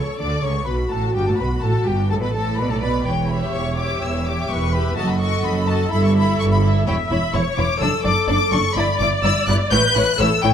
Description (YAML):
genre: quick classical-period movement for string orchestra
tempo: 126 BPM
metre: 4/4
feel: rubato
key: unclear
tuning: A4 = 442 Hz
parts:
  - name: rich studio violin section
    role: melody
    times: 0.0-10.5 s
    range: G5 to G6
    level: -24 LUFS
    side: left 5 dB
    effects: none
  - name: rich studio violin section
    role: second line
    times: 0.0-10.5 s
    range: D4 to E5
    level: -26 LUFS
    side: left 3 dB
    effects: none
  - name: clear studio viola section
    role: accompaniment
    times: 0.0-10.5 s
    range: F#4 to E5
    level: -24 LUFS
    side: left 1 dB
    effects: none
  - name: rich studio cello section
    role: bass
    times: 0.0-10.5 s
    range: E2 to D3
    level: -23 LUFS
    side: right 2 dB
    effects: none
  - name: warm studio double bass section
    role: bass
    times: 0.0-10.5 s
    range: E1 to D2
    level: -23 LUFS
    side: right 2 dB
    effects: none
room: light reverb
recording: close, detailed microphones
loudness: -17 LUFS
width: side -8 dB against mid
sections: 0.0-10.5 A section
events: none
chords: 0.0 D; 1.2 Gmaj9; 2.1 D5/A; 3.1 Em; 5.0 D#dim/F#; 5.9 Em/G; 6.9 E5; 7.8 D/F#; 8.8 Em7/G; 9.7 A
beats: 0.20 0.68 | 1.15 1.63 2.11 2.59 | 3.07 3.54 4.02 4.50 | 4.97 5.44 5.92 6.39 | 6.87 7.34 7.81 8.28 | 8.76 9.24 9.71 10.19